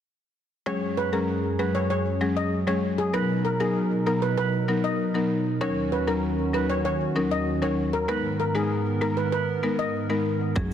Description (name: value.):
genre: dancehall.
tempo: 97 BPM.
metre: 4/4.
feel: straight.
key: unclear.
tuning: A4 = 437 Hz.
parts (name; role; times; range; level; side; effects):
steel pan; melody; 0.7-9.9 s; Ab4 to Eb5; -28 LUFS; equal; digital delay.
buzzing marimba with medium mallets; accompaniment; 0.7-10.7 s; Gb3 to A#4; -26 LUFS; left 3 dB; none.
hollow soft pad; sustained chords; 0.7-10.7 s; Eb2 to A#4; -28 LUFS; right 3 dB; chorus, sidechain pumping.
plucky analog bass; bass; 10.6-10.7 s; Gb1; -28 LUFS; right 1 dB; none.
electronic shaker and kick drum; drums; 10.6-10.7 s; none; -27 LUFS; right 1 dB; vintage 12-bit sampler grit.
room: light reverb, small room ambience.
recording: dense, heavily limited modern master.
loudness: -23 LUFS.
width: side -9 dB against mid.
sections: 0.7-10.6 A section.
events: none.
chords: 0.7 Gbsus2; 3.1 Bmaj7; 5.6 Ebm7; 8.1 Abmadd9.